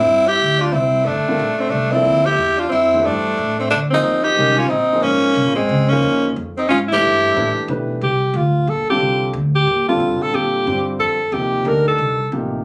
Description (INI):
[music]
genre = modal jazz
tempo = 181 BPM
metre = 3/4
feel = swing 64% on 8ths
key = G dorian, C dorian from 8.0 s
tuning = A4 = 438 Hz
[part]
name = growling tenor saxophone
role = melody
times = 0.0-7.7 s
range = C4 to G4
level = -19 LUFS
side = equal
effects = none
[part]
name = bright alto saxophone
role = second line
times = 0.0-12.3 s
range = Ab3 to Bb4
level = -22 LUFS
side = equal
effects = none
[part]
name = warm baby grand piano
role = accompaniment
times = 0.0-12.6 s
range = C3 to D5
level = -26 LUFS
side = equal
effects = none
[part]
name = upright bass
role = bass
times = 0.0-12.6 s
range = G1 to B2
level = -25 LUFS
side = equal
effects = none
[sound]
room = light reverb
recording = recorded on a phone in the room, club reverb, compression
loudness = -17 LUFS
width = mono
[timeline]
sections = 0.1-8.0 A section; 8.0-12.6 B section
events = alto saxophone solo 8.0-12.6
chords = 0.1 G13sus4; 4.0 Eb13sus4; 7.0 G69; 8.0 C9sus4